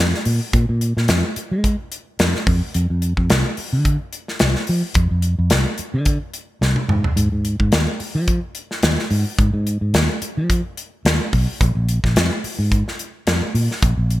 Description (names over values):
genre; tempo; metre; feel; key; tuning
electric jazz fusion; 108 BPM; 4/4; swing 55% on 16ths; unclear; A4 = 440 Hz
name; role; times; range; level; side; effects
fingered electric bass; bass; 0.0-14.2 s; Bb1 to Ab3; -18 LUFS; equal; none
modern studio drum kit; drums; 0.1-14.2 s; hi-hat, kick drum, snare drum, toms; -20 LUFS; equal; gated reverb
room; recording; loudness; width
little or no reverb; bright 1980s-style digital production; -17 LUFS; side -16 dB against mid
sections
0.0-14.2 A section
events
drum fill 6.6-7.2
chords
none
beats
| 0.54 1.09 1.65 2.20 | 2.75 3.31 3.86 4.41 | 4.96 5.52 6.07 6.62 | 7.18 7.73 8.29 8.84 | 9.39 9.95 10.50 11.06 | 11.61 12.16 12.72 13.27 | 13.83